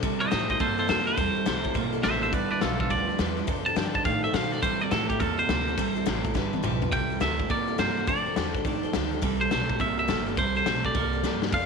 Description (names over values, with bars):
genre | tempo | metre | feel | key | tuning
rockabilly | 209 BPM | 4/4 | swing 64% on 8ths | C major | A4 = 440 Hz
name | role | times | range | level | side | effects
picked steel-string acoustic guitar | accompaniment | 0.0-11.7 s | C3 to D5 | -33 LUFS | left 11 dB | none
electric guitar through a small old amp | riff | 0.0-11.7 s | F2 to Bb3 | -30 LUFS | right 16 dB | spring reverb
upright bass | bass | 0.0-11.7 s | G1 to C3 | -34 LUFS | right 2 dB | none
raw garage drum kit | drums | 0.0-11.6 s | hi-hat, kick drum, snare drum, toms | -30 LUFS | left 4 dB | none
twangy electric guitar | melody | 0.2-11.7 s | F4 to A5 | -28 LUFS | right 1 dB | tape echo
room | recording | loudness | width
light reverb, small room ambience | 1960s-style stereo with parts hard left and right | -24 LUFS | side -5 dB against mid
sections
0.0-6.9 A section; 6.9-11.7 B section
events
clean electric guitar solo 0.0-6.9; drum fill 6.4-6.9, 11.2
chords
0.0 C6; 2.3 G6; 3.5 F6; 4.6 C6; 6.4 G6; 6.9 C6; 8.1 F6; 9.2 C6